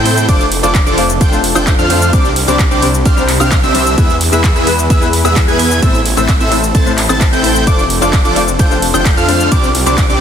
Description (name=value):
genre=EDM, festival progressive house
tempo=130 BPM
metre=4/4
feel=straight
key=unclear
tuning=A4 = 437 Hz
part: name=clear grand piano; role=accompaniment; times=0.0-9.9 s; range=A2 to C5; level=-19 LUFS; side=left 6 dB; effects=vintage 12-bit sampler grit, sidechain pumping, tape echo
part: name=lush unison pad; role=sustained chords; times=0.0-10.2 s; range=C3 to B4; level=-22 LUFS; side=equal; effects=chorus, sidechain pumping
part: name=wide unison lead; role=arpeggios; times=0.0-10.2 s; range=D6 to A6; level=-18 LUFS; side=equal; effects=sidechain pumping, tape echo
part: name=dense compressed supersaw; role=riff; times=0.0-10.2 s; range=B3 to A5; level=-16 LUFS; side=right 1 dB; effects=sidechain pumping, tape echo
part: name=detuned saw bass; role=bass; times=0.0-10.2 s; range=F1 to A2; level=-18 LUFS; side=equal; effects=sidechain pumping
part: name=house drum kit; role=drums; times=0.1-10.2 s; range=cabasa, handclaps, hi-hat, ride cymbal, woodblock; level=-18 LUFS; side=equal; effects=overdrive
part: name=electronic kick drum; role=drums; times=0.3-10.1 s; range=none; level=-12 LUFS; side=equal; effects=overdrive
room=light reverb, digital ambience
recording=dense, heavily limited modern master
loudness=-9 LUFS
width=side -8 dB against mid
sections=0.0-10.2 A section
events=none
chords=0.3 F6; 2.1 Csus2; 4.0 E; 5.8 Am; 7.7 F6; 9.5 Csus2